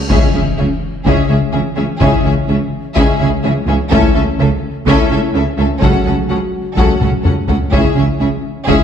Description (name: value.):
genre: cinematic, hybrid orchestral and electronic film score.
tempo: 126 BPM.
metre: 4/4.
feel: straight.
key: C# minor.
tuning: A4 = 441 Hz.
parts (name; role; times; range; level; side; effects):
cymbal swell and impact; sound effects; 0.0-2.0 s; none; -21 LUFS; left 1 dB; none.
warm studio violin section; melody; 0.1-8.8 s; E5 to F#5; -24 LUFS; left 6 dB; none.
warm symphonic violin section; second line; 0.1-8.8 s; G#4 to A4; -22 LUFS; left 3 dB; none.
clear symphonic viola section; accompaniment; 0.1-8.8 s; C#4; -23 LUFS; right 1 dB; none.
mellow French horn section; sustained chords; 0.1-8.8 s; G#3 to F#4; -23 LUFS; left 6 dB; none.
harp-like synth pluck; arpeggios; 0.1-8.8 s; C#3 to A4; -21 LUFS; left 2 dB; chorus, digital delay.
clear symphonic cello section; bass; 0.1-8.8 s; C#3; -21 LUFS; right 2 dB; none.
dark tuba; bass; 0.1-8.8 s; C#2; -19 LUFS; right 3 dB; none.
rich studio double bass section; bass; 0.1-8.8 s; C#2; -19 LUFS; right 3 dB; none.
taiko ensemble; drums; 0.1-8.8 s; none; -18 LUFS; left 1 dB; none.
room: moderate scoring stage reverb, RT60 1.6 s.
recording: dark, warm production.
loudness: -12 LUFS.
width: side -8 dB against mid.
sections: 0.1-8.8 A section.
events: impact 0.1-2.0; drum fill 7.0-7.7.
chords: 0.1 C#m; 3.9 A/C#; 5.8 F#m/C#; 7.7 C#m.